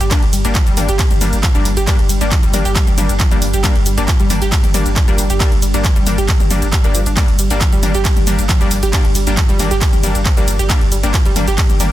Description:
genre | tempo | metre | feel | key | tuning
driving peak-time techno | 136 BPM | 4/4 | straight | G minor | A4 = 439 Hz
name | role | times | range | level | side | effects
analog pluck | riff | 0.0-11.8 s | F3 to G4 | -23 LUFS | right 1 dB | chorus, sidechain pumping, ping-pong delay
saturated sub bass | bass | 0.0-11.9 s | G1 | -19 LUFS | equal | tube saturation, sidechain pumping, low-pass filter
metallic inharmonic drone | drone | 0.0-11.9 s | G2 to G3 | -26 LUFS | right 3 dB | chorus, built-in reverb, sidechain pumping
techno drum kit | drums | 0.0-11.9 s | handclaps, hi-hat, ride cymbal, shaker, toms | -20 LUFS | equal | sidechain pumping on hats, sidechain pumping on perc, sidechain pumping on cymbals, sidechain pumping on toms
supersaw stab | stabs | 0.1-11.9 s | G3 to D4 | -22 LUFS | left 4 dB | sidechain pumping, tape echo
electronic kick drum | drums | 0.1-11.7 s | none | -15 LUFS | equal | none
room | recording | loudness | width
little or no reverb | dense, heavily limited modern master | -12 LUFS | side -14 dB against mid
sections
0.0-11.9 A section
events
none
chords
0.0 Gm

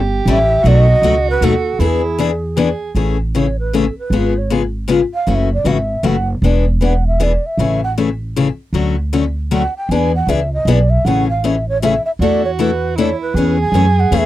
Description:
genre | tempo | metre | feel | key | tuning
acoustic string swing (jazz manouche) | 156 BPM | 3/4 | swing 61% on 8ths | A major | A4 = 440 Hz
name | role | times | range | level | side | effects
warm soprano saxophone | second line | 0.0-2.9, 12.2-14.3 s | E4 to G#4 | -22 LUFS | right 6 dB | none
upright bass | bass | 0.0-14.3 s | E1 to F#2 | -16 LUFS | right 1 dB | none
breathy mellow long shakuhachi | melody | 0.3-14.3 s | G#4 to A5 | -18 LUFS | right 2 dB | none
picked steel-string acoustic guitar | accompaniment | 0.3-14.2 s | B2 to A4 | -16 LUFS | left 5 dB | none
room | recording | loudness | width
little or no reverb | dry, close 1970s-style studio recording | -13 LUFS | side -14 dB against mid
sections
0.0-3.0 A section; 3.0-12.2 B section; 12.2-14.3 A section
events
shakuhachi solo 3.0-12.2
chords
0.0 A7; 0.6 B7; 1.8 E7; 3.0 Amaj7; 4.1 C#7/G#; 5.3 F#m7; 6.4 E7; 7.6 Amaj7; 8.7 Dmaj7; 9.9 E7; 11.0 Amaj7; 12.2 E9sus4; 13.4 Amaj7/E

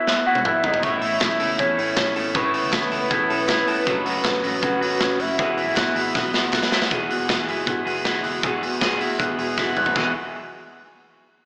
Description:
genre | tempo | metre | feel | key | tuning
jangly indie pop | 158 BPM | 4/4 | straight | E major | A4 = 440 Hz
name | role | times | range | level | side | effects
warm velvety synth lead | melody | 0.0-6.3 s | B4 to F#5 | -28 LUFS | equal | chorus, slapback echo
electric guitar through a small old amp | arpeggios | 0.0-10.1 s | B2 to C#5 | -27 LUFS | equal | slapback echo, analog delay
big rock drum kit | drums | 0.1-10.0 s | crash cymbal, hi-hat, kick drum, snare drum, toms | -27 LUFS | equal | none
warm trumpet | second line | 0.3-6.3 s | B3 to F#4 | -31 LUFS | equal | slapback echo
fingerpicked steel-string acoustic guitar | accompaniment | 0.8-10.1 s | E2 to F#4 | -30 LUFS | equal | none
vintage muted picked electric bass | bass | 0.8-10.1 s | E1 to E2 | -43 LUFS | equal | none
group handclap | percussion | 1.2-6.6 s | none | barely audible | none | none
room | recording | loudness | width
wet lush hall reverb, RT60 2.0 s, small room reverb | big arena sound, small speaker sound | -22 LUFS | mono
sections
0.0-6.9 A section; 6.9-10.0 B section; 10.0-11.5 C section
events
drum fill 0.1-0.8, 6.1-6.9, 9.6-10.0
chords
0.0 Bsus4; 0.8 Aadd9; 3.9 F#m; 5.4 Eadd9

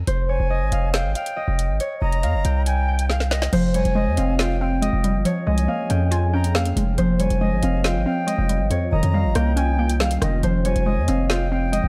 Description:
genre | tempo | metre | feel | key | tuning
hip hop, drill | 139 BPM | 4/4 | half-time | F minor | A4 = 441 Hz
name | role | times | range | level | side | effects
hard-hitting 808-style bass | bass | 0.0-11.9 s | F1 to F2 | -23 LUFS | equal | none
concert harp | melody | 0.1-11.9 s | C5 to Ab5 | -29 LUFS | equal | none
drill drum kit | drums | 0.1-11.8 s | crash cymbal, hi-hat, rim click, snare drum | -29 LUFS | equal | none
jazz flute | second line | 0.3-11.9 s | Eb5 to Bb5 | -34 LUFS | equal | tape echo
hollow square pluck | accompaniment | 3.5-11.9 s | F2 to F4 | -26 LUFS | equal | chorus
glassy FM pad | sustained chords | 4.5-11.9 s | Eb3 to Ab4 | -33 LUFS | equal | ensemble chorus, built-in reverb
room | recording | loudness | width
digital ambience | dark, warm production | -21 LUFS | mono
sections
0.0-3.5 A section; 3.5-11.9 B section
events
drum fill 3.1-3.5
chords
0.1 Fmadd9; 1.8 F9sus4; 3.5 Fmadd9; 5.3 Bbm7; 7.0 Fmadd9; 8.7 Eb7/F; 10.4 Fmadd9

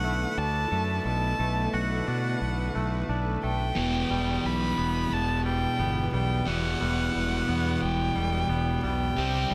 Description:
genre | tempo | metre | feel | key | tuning
rock | 89 BPM | 4/4 | straight | E minor | A4 = 439 Hz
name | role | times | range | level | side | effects
rich violin | melody | 0.0-9.5 s | F#5 to B5 | -33 LUFS | equal | none
warm chamber string section | sustained chords | 0.0-9.5 s | D3 to C5 | -40 LUFS | equal | none
twangy electric guitar | arpeggios | 0.0-9.5 s | E2 to F#4 | -37 LUFS | equal | tape echo
fuzz fingered electric bass | bass | 0.0-9.5 s | E1 to B2 | -32 LUFS | equal | overdrive
cranked stack guitar | riff | 3.8-9.5 s | E2 to C4 | -31 LUFS | equal | overdrive
room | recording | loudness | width
light reverb, small room ambience | none | -27 LUFS | mono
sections
0.0-9.5 A section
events
none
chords
0.0 Bm7; 3.8 Emadd9

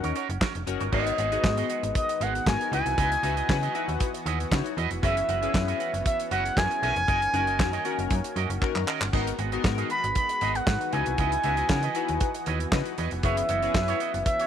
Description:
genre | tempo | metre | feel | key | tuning
early-eighties boogie funk | 117 BPM | 4/4 | straight | G# minor | A4 = 443 Hz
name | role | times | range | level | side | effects
expressive synth lead | melody | 0.0-14.5 s | D#5 to B5 | -28 LUFS | equal | chorus
chorused polysynth | accompaniment | 0.0-14.0 s | B3 to C#5 | -33 LUFS | left 14 dB | none
electric guitar with an envelope filter | riff | 0.0-14.5 s | B3 to F#5 | -33 LUFS | right 14 dB | wide subtle chorus
slap-like FM bass | bass | 0.0-14.2 s | E#1 to C#3 | -30 LUFS | equal | none
damped 70s drum kit | drums | 0.0-14.5 s | crash cymbal, handclaps, hi-hat, kick drum, snare drum, splash cymbal | -28 LUFS | right 1 dB | none
lush unison pad | sustained chords | 0.9-14.5 s | D#3 to D#5 | -37 LUFS | equal | chorus
room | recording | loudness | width
studio reverb | 1960s-style stereo with parts hard left and right | -24 LUFS | side -9 dB against mid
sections
0.9-14.5 A section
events
drum fill 8.6-9.1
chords
0.0 D#m7; 0.9 G#m7; 2.7 C#m11; 5.0 F#7sus4; 7.1 D#m7/F#; 9.1 G#m7; 10.9 C#m11; 13.2 F#7sus4

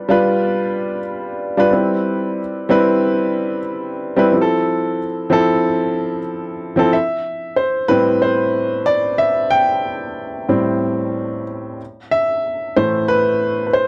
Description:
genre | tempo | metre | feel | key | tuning
soul | 92 BPM | 4/4 | swing 54% on 16ths | A minor | A4 = 439 Hz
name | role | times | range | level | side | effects
clear grand piano | solo | 0.0-13.9 s | A2 to G5 | -18 LUFS | equal | none
room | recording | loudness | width
little or no reverb | dry, close 1970s-style studio recording | -18 LUFS | mono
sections
0.0-6.9 A section; 6.9-13.9 B section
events
grand piano solo 6.9-13.9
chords
0.0 G7; 1.7 Cmaj7; 4.3 Fmaj7; 6.9 Am7; 11.8 Fmaj7 (rootless)

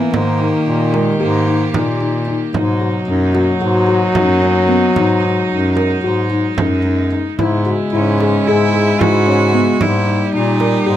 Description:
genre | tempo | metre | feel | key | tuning
contemporary instrumental, chamber music in an uneven meter | 224 BPM (eighths) | 9/8 | straight | unclear | A4 = 440 Hz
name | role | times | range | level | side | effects
bright cello | melody | 0.0-2.0, 7.9-11.0 s | G#3 to F#4 | -19 LUFS | right 5 dB | none
mellow French horn | second line | 0.0-11.0 s | D#3 to G#3 | -17 LUFS | left 2 dB | none
bright chamber string section | sustained chords | 0.0-11.0 s | B2 to G4 | -24 LUFS | right 4 dB | none
felt-muted upright piano | arpeggios | 0.0-11.0 s | B3 to A#4 | -20 LUFS | left 3 dB | none
clear bass clarinet | bass | 0.0-11.0 s | F#2 to A#2 | -18 LUFS | equal | none
frame drum | percussion | 0.1-10.8 s | none | -20 LUFS | right 4 dB | none
room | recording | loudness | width
light reverb | close, detailed microphones | -13 LUFS | side -11 dB against mid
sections
0.0-11.0 A section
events
none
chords
0.1 D#/G#; 2.5 Bmaj7; 7.4 C#m7/G#; 9.8 D#/G#

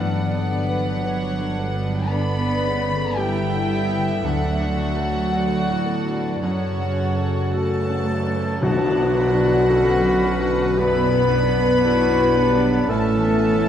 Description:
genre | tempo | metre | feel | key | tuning
cinematic, emotional film score for orchestra | 56 BPM | 4/4 | rubato | B minor | A4 = 442 Hz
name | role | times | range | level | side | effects
warm studio violin section | melody | 0.0-13.7 s | D5 to B5 | -30 LUFS | left 2 dB | none
rich studio violin section | second line | 0.0-13.7 s | G4 to B5 | -31 LUFS | left 1 dB | none
clear concert grand piano | accompaniment | 0.0-13.7 s | B1 to B4 | -29 LUFS | equal | none
rich studio viola section | accompaniment | 0.0-13.7 s | C#3 to B4 | -29 LUFS | right 1 dB | none
concert harp | arpeggios | 0.0-13.7 s | F#2 to D6 | -29 LUFS | left 5 dB | none
rich studio double bass section | bass | 0.0-13.7 s | G1 to F#2 | -26 LUFS | right 3 dB | none
warm studio cello section | bass | 0.0-13.7 s | F#3 to B3 | -26 LUFS | right 3 dB | none
cymbal swell and tam-tam | percussion | 4.2-12.8 s | none | -34 LUFS | left 1 dB | none
warm oboe | second line | 7.5-13.7 s | F#4 to B4 | -29 LUFS | right 2 dB | none
mellow French horn section | sustained chords | 7.5-13.7 s | F#4 to B4 | -21 LUFS | left 5 dB | none
bright concert flute | second line | 8.6-13.7 s | F#5 to B5 | -33 LUFS | left 1 dB | none
warm clarinet | second line | 8.6-13.7 s | B3 to E4 | -29 LUFS | right 1 dB | none
timpani | percussion | 8.6-10.2 s | B2 | -29 LUFS | equal | none
room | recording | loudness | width
wet concert hall reverb, RT60 2.1 s | dark, warm production | -18 LUFS | side -9 dB against mid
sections
0.0-8.6 A section; 8.6-13.7 B section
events
band accent 8.6-9.7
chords
0.0 G; 4.2 D; 6.4 F#m; 8.6 Bm7; 12.9 Asus2

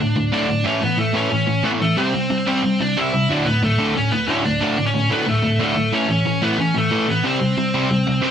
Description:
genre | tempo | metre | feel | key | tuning
punk | 182 BPM | 4/4 | straight | unclear | A4 = 441 Hz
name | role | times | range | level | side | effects
smooth overdriven lead guitar | melody | 0.0-8.3 s | A3 to E5 | -21 LUFS | right 1 dB | tape echo
crunchy overdriven guitar | riff | 0.0-8.3 s | D2 to C4 | -19 LUFS | equal | none
room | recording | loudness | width
moderate studio ambience, RT60 0.5 s | dense, heavily limited modern master | -16 LUFS | side -8 dB against mid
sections
0.0-8.3 A section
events
none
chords
0.0 D5; 0.7 A; 2.0 C; 3.3 D5; 5.9 A; 7.2 C5

